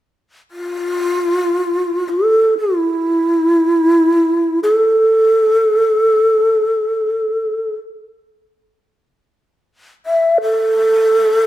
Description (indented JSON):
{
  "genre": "japanese traditional",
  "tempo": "free time",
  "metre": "none",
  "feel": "none",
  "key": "unclear",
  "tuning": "A4 = 440 Hz",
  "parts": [
    { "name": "breathy mellow long shakuhachi", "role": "melody", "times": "0.5-11.5 s", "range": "E4 to E5", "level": "-13 LUFS", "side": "equal", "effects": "none" }
  ],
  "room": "light reverb",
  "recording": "none",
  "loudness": "-13 LUFS",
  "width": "side -14 dB against mid",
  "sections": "0.0-11.5 A section",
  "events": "none",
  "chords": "none"
}